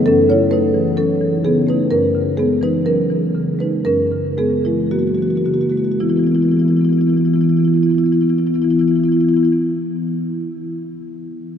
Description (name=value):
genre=classical, contemporary piece for solo marimba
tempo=55-67 BPM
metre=4/4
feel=rubato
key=E major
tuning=A4 = 445 Hz
part: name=marimba with soft mallets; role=solo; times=0.0-9.6 s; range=F#2 to C#5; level=-14 LUFS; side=equal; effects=none
room=wet huge ambient reverb, RT60 8.1 s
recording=in a vast, echoing space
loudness=-14 LUFS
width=side -8 dB against mid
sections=0.0-6.0 A section; 6.0-10.3 B section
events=slowing down 0.0-6.0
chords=0.0 F#m7; 1.9 F#9; 6.0 E5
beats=0.07 0.98 | 1.92 2.88 3.88 4.93 | 6.02 7.10 8.18 9.26